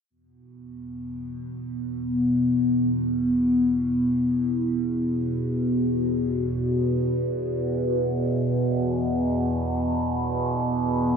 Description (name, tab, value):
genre	ambient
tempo	free time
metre	none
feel	none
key	unclear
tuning	A4 = 440 Hz
part	overtone-sweeping drone	drone	0.8-11.2 s	E2 to B2	-22 LUFS	equal	chorus, built-in reverb, phaser
room	wet cathedral reverb, RT60 5.2 s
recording	dark, warm production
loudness	-22 LUFS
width	side -6 dB against mid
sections	0.1-11.2 A section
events	none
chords	0.1 E5